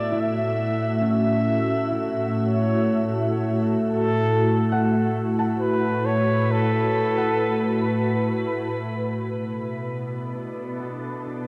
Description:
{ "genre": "ambient", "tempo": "67 BPM", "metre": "3/4", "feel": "straight", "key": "unclear", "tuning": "A4 = 442 Hz", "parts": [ { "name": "mellow flugelhorn", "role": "melody", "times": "0.0-8.3 s", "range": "A4 to E5", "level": "-29 LUFS", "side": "equal", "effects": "tape echo" }, { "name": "glassy FM pad", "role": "sustained chords", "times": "0.0-11.5 s", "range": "A2 to E5", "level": "-25 LUFS", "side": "equal", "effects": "ensemble chorus, built-in reverb" }, { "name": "concert harp", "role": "arpeggios", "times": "0.0-11.5 s", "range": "C#4 to A5", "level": "-35 LUFS", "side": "equal", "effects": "tape echo" } ], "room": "wet plate reverb, RT60 2.9 s", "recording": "echo-heavy mix", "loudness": "-23 LUFS", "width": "mono", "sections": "0.0-9.2 A section; 9.2-11.5 B section", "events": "none", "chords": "0.0 F#m7/A; 9.2 Bm7" }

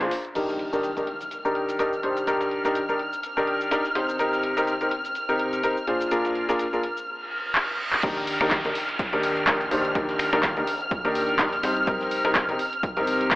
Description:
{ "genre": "piano house", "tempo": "125 BPM", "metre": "4/4", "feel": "swing 56% on 16ths", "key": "Eb major", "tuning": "A4 = 440 Hz", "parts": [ { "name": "clear grand piano", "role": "riff", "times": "0.0-13.4 s", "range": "Bb2 to C5", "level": "-25 LUFS", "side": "equal", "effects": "sidechain pumping, low-pass filter, dub echo" }, { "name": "plucky analog bass", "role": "bass", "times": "0.0-0.1, 8.0-13.4 s", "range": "Bb1 to Eb2", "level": "-33 LUFS", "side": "equal", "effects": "sidechain pumping" }, { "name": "breakbeat sampler-style drum kit", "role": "drums", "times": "0.0-13.4 s", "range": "hi-hat, snare drum", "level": "-37 LUFS", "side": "equal", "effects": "none" }, { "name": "punchy analog drum machine", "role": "drums", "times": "0.0-13.4 s", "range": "cabasa, crash cymbal, finger snaps, handclaps, hi-hat", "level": "-27 LUFS", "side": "equal", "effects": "none" }, { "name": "dark studio violin section", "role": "sustained chords", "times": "0.4-13.4 s", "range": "F6", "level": "-29 LUFS", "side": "equal", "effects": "sidechain pumping" }, { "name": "impact, reverse cymbal and downlifter", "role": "sound effects", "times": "0.4-2.3, 7.2-11.9 s", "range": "none", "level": "-33 LUFS", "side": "right 1 dB", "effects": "none" }, { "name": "electronic kick drum", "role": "drums", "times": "8.0-13.4 s", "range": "none", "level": "-30 LUFS", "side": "equal", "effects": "none" } ], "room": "moderate digital room reverb, RT60 1.2 s", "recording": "AM radio sound", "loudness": "-22 LUFS", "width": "side -19 dB against mid", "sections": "0.4-8.0 A section; 8.0-13.4 B section", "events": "impact 0.4-2.3; filter sweep on grand piano 0.4-8.0; reverse cymbal 7.2-8.0; drum fill 7.6-8.0; drop 8.0-13.4", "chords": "0.4 Ebmaj7; 4.0 Cm7; 5.9 Bb7; 8.0 Ebmaj7; 11.6 Cm7" }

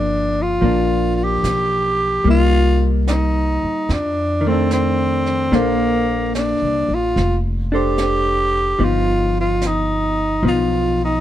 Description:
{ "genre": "jazz ballad", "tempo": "73 BPM", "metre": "4/4", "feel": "swing 69% on 8ths", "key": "G minor", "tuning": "A4 = 441 Hz", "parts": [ { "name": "growling tenor saxophone", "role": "melody", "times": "0.0-11.2 s", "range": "Bb3 to G4", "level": "-19 LUFS", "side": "equal", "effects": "none" }, { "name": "vintage hollow-body jazz guitar", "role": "accompaniment", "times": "0.0-11.2 s", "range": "Eb3 to C5", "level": "-21 LUFS", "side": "left 1 dB", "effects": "none" }, { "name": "upright bass", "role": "bass", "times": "0.0-11.2 s", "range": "F1 to F2", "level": "-21 LUFS", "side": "equal", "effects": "none" }, { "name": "jazz brush drum kit", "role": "drums", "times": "0.6-11.2 s", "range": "brushed snare drum, hi-hat, snare drum", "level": "-32 LUFS", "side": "right 3 dB", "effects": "none" } ], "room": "little or no reverb", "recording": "dark, warm production", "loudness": "-15 LUFS", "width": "side -12 dB against mid", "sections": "0.0-11.2 A section", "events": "none", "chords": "0.0 Gm7; 2.2 Cm7; 3.9 F6; 5.5 Bbmaj9; 8.8 G7b13" }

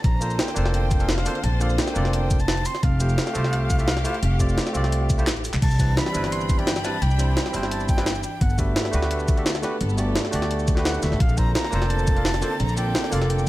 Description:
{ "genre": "liquid drum and bass", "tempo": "172 BPM", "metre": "4/4", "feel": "straight", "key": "C major", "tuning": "A4 = 440 Hz", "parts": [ { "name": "breathy bright concert flute", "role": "melody", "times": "0.0-13.5 s", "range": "E5 to C6", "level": "-31 LUFS", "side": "right 1 dB", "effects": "tape echo" }, { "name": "bright studio string section", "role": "sustained chords", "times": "0.0-13.5 s", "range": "D3 to B5", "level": "-32 LUFS", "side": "equal", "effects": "sidechain pumping" }, { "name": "upright bass", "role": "bass", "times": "0.0-13.5 s", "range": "F1 to D2", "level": "-24 LUFS", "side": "equal", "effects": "none" }, { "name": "electronic kick drum", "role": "drums", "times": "0.0-12.1 s", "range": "none", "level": "-21 LUFS", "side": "equal", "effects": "overdrive, studio reverb" }, { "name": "jungle sampler-style drum kit", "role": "drums", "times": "0.0-13.5 s", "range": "crash cymbal, handclaps, hi-hat, shaker, snare drum", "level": "-27 LUFS", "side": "equal", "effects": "studio reverb" }, { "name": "barky tine electric piano", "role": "accompaniment", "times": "0.2-13.5 s", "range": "G3 to F5", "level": "-28 LUFS", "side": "right 1 dB", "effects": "none" } ], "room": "light reverb, studio reverb", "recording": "none", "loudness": "-20 LUFS", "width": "side -16 dB against mid", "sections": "0.0-5.6 A section; 5.6-13.5 A section", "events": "drop 0.0-5.6, 5.6-13.5; drum fill 5.3-5.6", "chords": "0.0 Bbmaj9; 2.8 Fmaj9; 5.6 Cmaj9; 8.4 Gmaj9; 11.2 Bbmaj9" }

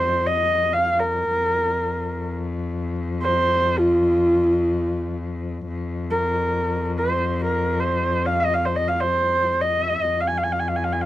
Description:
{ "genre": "mongolian traditional, Mongolian folk", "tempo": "free time", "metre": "none", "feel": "none", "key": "F yu mode", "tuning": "A4 = 440 Hz", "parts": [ { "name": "dark horsehead fiddle", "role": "melody", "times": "0.0-11.1 s", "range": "F4 to Ab5", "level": "-20 LUFS", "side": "right 1 dB", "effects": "none" }, { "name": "clear cello", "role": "drone", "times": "0.0-11.1 s", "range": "F2", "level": "-26 LUFS", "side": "left 2 dB", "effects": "none" } ], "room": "light reverb", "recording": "dry, close 1970s-style studio recording", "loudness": "-20 LUFS", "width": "side -14 dB against mid", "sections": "0.0-5.7 A section; 5.7-11.1 A section", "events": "none", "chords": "none" }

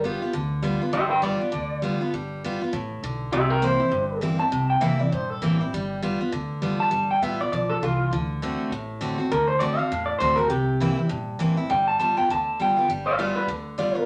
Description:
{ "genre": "rockabilly", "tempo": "201 BPM", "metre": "4/4", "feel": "swing 58% on 8ths", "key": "G mixolydian", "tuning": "A4 = 440 Hz", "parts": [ { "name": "electric guitar through a small old amp", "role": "melody", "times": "0.0-14.1 s", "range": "F4 to A5", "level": "-26 LUFS", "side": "equal", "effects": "none" }, { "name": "picked steel-string acoustic guitar", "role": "accompaniment", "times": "0.0-14.1 s", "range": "G2 to F#4", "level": "-29 LUFS", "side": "equal", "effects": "none" }, { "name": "upright bass", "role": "bass", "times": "0.0-13.9 s", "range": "G1 to E2", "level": "-33 LUFS", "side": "equal", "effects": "none" } ], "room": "wet studio reverb, RT60 0.6 s", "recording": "none", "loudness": "-24 LUFS", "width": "mono", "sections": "0.0-12.9 A section; 12.9-14.1 A section", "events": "none", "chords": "0.0 G7; 3.3 C7; 5.7 G7; 8.1 D7; 10.5 C7; 11.7 G7" }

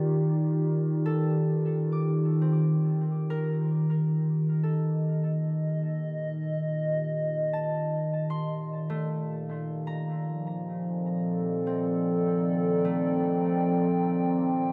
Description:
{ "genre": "ambient", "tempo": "76 BPM", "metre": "4/4", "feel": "straight", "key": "unclear", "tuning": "A4 = 441 Hz", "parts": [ { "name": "warbly tape-like pad", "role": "sustained chords", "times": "0.0-14.7 s", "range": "Eb3 to G5", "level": "-28 LUFS", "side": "equal", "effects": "chorus, built-in reverb" }, { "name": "concert harp", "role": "arpeggios", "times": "1.1-14.7 s", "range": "A3 to D6", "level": "-43 LUFS", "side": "equal", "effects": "dub echo" }, { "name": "overtone-sweeping drone", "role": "drone", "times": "5.5-14.7 s", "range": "Bb2 to Eb3", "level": "-43 LUFS", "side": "equal", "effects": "chorus, built-in reverb" } ], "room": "wet plate reverb, RT60 2.5 s", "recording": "echo-heavy mix", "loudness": "-28 LUFS", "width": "mono", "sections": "0.0-3.9 A section; 3.9-14.7 B section", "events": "fade-in on harp 3.9-14.7; fade-in on synth drone 3.9-14.7", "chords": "0.0 Ebmaj7; 3.9 F6" }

